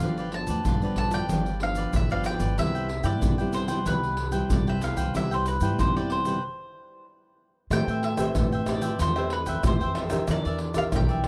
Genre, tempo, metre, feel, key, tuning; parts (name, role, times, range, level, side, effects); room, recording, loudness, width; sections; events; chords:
samba and choro; 93 BPM; 4/4; straight; C major; A4 = 440 Hz
mandolin; melody; 0.0-11.3 s; B4 to A5; -34 LUFS; equal
cavaquinho; accompaniment; 0.0-11.3 s; E4 to G5; -38 LUFS; equal
nylon-string guitar; accompaniment; 0.0-11.3 s; G2 to B4; -33 LUFS; equal
upright bass; bass; 0.0-11.3 s; G1 to C3; -32 LUFS; equal
egg shaker, surdo, pandeiro and tamborim; percussion; 0.0-11.3 s; -30 LUFS; equal
small room ambience; dry, close 1970s-style studio recording; -26 LUFS; mono
0.0-7.7 A section; 7.7-11.3 B section
stop 6.4-7.7
0.0 G7; 2.6 Cmaj7; 7.7 Am9; 10.3 Em7b5